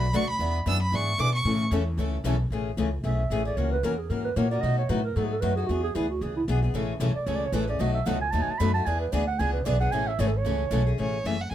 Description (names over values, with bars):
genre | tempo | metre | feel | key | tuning
acoustic string swing (jazz manouche) | 227 BPM | 4/4 | swing 56% on 8ths | A major | A4 = 440 Hz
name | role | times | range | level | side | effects
warm violin | melody | 0.0-1.6, 11.0-11.5 s | C#5 to E6 | -28 LUFS | right 2 dB | none
picked steel-string acoustic guitar | accompaniment | 0.0-11.5 s | B2 to B4 | -30 LUFS | left 5 dB | none
picked steel-string acoustic guitar | accompaniment | 0.0-2.4, 6.7-10.8 s | B2 to B4 | -35 LUFS | right 6 dB | none
upright bass | bass | 0.0-11.5 s | F#1 to B2 | -27 LUFS | equal | none
breathy clarinet | second line | 3.0-10.9 s | E4 to B5 | -29 LUFS | right 5 dB | none
room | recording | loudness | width
light reverb | none | -24 LUFS | side -11 dB against mid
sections
0.0-2.5 A section; 2.5-11.0 A section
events
violin solo 0.0-2.5; clarinet solo 2.5-11.0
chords
0.4 E7; 1.5 A; 2.5 Amaj7; 3.6 F#7; 4.6 B7; 5.7 E7; 6.7 Amaj7; 7.8 B7; 8.9 E7; 9.9 Amaj7